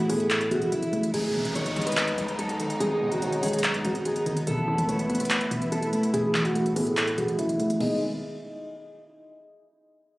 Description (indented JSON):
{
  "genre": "hip hop, trap",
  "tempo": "144 BPM",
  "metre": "4/4",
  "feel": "half-time",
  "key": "G# phrygian",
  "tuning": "A4 = 439 Hz",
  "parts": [
    { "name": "fingerpicked steel-string acoustic guitar", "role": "melody", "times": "0.0-8.0 s", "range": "D#4 to C#5", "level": "-29 LUFS", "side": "equal", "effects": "low-pass filter, ping-pong delay" },
    { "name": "soft octave-layered synth lead", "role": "second line", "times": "0.0-8.0 s", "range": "G#4 to D#5", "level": "-34 LUFS", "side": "equal", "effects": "chorus, phaser, ping-pong delay" },
    { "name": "soft round pluck", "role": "accompaniment", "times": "0.0-8.0 s", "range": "G#2 to B3", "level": "-30 LUFS", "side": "equal", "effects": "chorus, low-pass filter" },
    { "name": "warm chamber string section", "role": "sustained chords", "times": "0.0-8.0 s", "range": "G#3 to D#5", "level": "-32 LUFS", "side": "equal", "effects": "low-pass filter" },
    { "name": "hard-hitting 808-style bass", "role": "bass", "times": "0.0-8.2 s", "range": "F#1 to A2", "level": "-34 LUFS", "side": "equal", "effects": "none" },
    { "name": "trap drum kit", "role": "drums", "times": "0.1-7.9 s", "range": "crash cymbal, handclaps, hi-hat", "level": "-30 LUFS", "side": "equal", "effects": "vintage 12-bit sampler grit" },
    { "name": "downlifter", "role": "sound effects", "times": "1.1-4.5 s", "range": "none", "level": "-37 LUFS", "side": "equal", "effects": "none" }
  ],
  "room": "light reverb",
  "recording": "recorded on a phone in the room, club reverb, compression",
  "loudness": "-23 LUFS",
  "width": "side -20 dB against mid",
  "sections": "0.0-1.1 A section; 1.1-7.8 B section; 7.8-9.5 C section",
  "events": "filter sweep 1.1-7.8",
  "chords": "0.0 Asus2; 1.1 G#m; 4.5 Asus2; 7.8 G#m",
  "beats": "0.30 0.72 | 1.14 1.55 1.97 2.39 | 2.80 3.22 3.64 4.05 | 4.47 4.89 5.30 5.72 | 6.14 6.55 6.97 7.39 | 7.80"
}